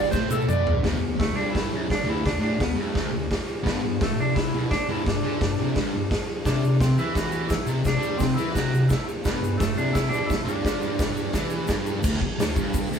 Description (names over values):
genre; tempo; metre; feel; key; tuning
garage rock duo or trio; 171 BPM; 4/4; straight; unclear; A4 = 440 Hz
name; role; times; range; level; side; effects
clean lap steel guitar; melody; 0.0-11.6 s; A3 to D5; -28 LUFS; equal; none
thick fuzz guitar; riff; 0.0-13.0 s; D2 to G3; -26 LUFS; equal; distortion
egg shaker; percussion; 0.0-0.6, 6.5-13.0 s; none; -42 LUFS; left 8 dB; none
raw garage drum kit; drums; 0.1-12.8 s; crash cymbal, hi-hat, kick drum, snare drum, toms; -26 LUFS; equal; none
room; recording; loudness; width
moderate studio reverb, RT60 0.6 s; band playing live in one room; -22 LUFS; side -7 dB against mid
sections
0.8-12.0 A section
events
drum fill 0.1-0.8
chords
0.0 G5; 0.8 N.C.; 3.6 G5; 6.5 C5; 9.2 G5; 12.0 N.C.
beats
0.13 0.48 | 0.84 1.19 1.54 1.89 | 2.24 2.59 2.94 3.30 | 3.65 4.00 4.35 4.70 | 5.05 5.40 5.75 6.10 | 6.45 6.80 7.15 7.50 | 7.85 8.20 8.55 8.90 | 9.25 9.60 9.95 10.30 | 10.65 11.00 11.35 11.70 | 12.04 12.39 12.74